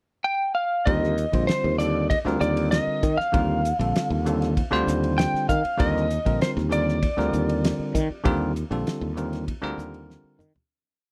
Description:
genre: electric jazz fusion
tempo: 98 BPM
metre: 4/4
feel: straight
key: Eb lydian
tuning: A4 = 440 Hz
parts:
  - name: lightly driven lead guitar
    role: melody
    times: 0.2-10.1 s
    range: C5 to G5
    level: -28 LUFS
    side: equal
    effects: slapback echo
  - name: bell-like tine electric piano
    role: accompaniment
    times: 0.9-10.6 s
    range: D3 to C5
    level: -30 LUFS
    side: equal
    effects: none
  - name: sustaining fretless electric bass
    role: bass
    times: 0.9-10.6 s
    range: Bb1 to Eb3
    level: -28 LUFS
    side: equal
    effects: none
  - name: damped 70s drum kit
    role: drums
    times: 0.9-10.7 s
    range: hi-hat, kick drum, ride cymbal, snare drum, toms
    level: -29 LUFS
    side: equal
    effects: none
room: little or no reverb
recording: dry, close 1970s-style studio recording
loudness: -24 LUFS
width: mono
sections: 0.0-0.9 pickup bar; 0.9-10.7 groove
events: fade-out 8.2-10.7; drum fill 10.1-10.7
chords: 0.0 N.C.; 0.9 Ebmaj9#11

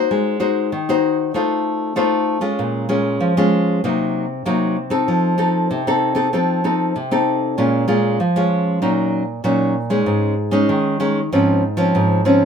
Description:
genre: samba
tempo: 96 BPM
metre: 4/4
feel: straight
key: Bb minor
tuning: A4 = 440 Hz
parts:
  - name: nylon-string guitar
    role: solo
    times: 0.0-12.4 s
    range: Ab2 to C5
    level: -16 LUFS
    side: equal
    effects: none
room: wet studio ambience, RT60 0.5 s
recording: minimal, uncompressed stereo recording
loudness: -16 LUFS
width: side -7 dB against mid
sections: 0.0-12.4 A section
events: none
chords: 0.1 Ab7; 1.4 F7/A; 2.6 Bbm7; 3.8 Cm7b5; 5.1 F7; 7.6 Bbm7; 8.8 Ebm7/Bb; 10.1 Absus4; 11.3 Dbmaj7/Ab

